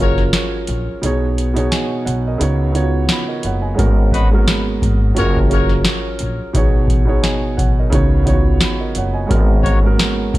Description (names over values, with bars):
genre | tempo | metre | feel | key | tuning
hip hop, boom-bap hip-hop | 87 BPM | 4/4 | swing 55% on 16ths | G# dorian | A4 = 440 Hz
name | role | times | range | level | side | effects
dark grand piano | accompaniment | 0.0-10.4 s | G#2 to B5 | -19 LUFS | right 2 dB | cassette tape, high-pass filter, low-pass filter
upright bass | bass | 0.0-10.4 s | F#1 to C#2 | -18 LUFS | equal | none
booming analog drum machine | drums | 0.2-10.4 s | hi-hat, kick drum, snare drum | -16 LUFS | equal | none
bright trumpet section | stabs | 4.1-5.4, 9.6-9.8 s | D#4 to C#5 | -26 LUFS | left 4 dB | high-pass filter, low-pass filter, ping-pong delay
room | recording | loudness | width
small room ambience | none | -14 LUFS | side -17 dB against mid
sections
0.0-10.4 A section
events
kick muted 1.0-3.8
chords
0.0 F#maj7; 1.0 B69; 2.4 C#9sus4; 3.8 G#m11; 5.2 F#maj7; 6.5 B69; 7.9 C#9sus4; 9.3 G#m11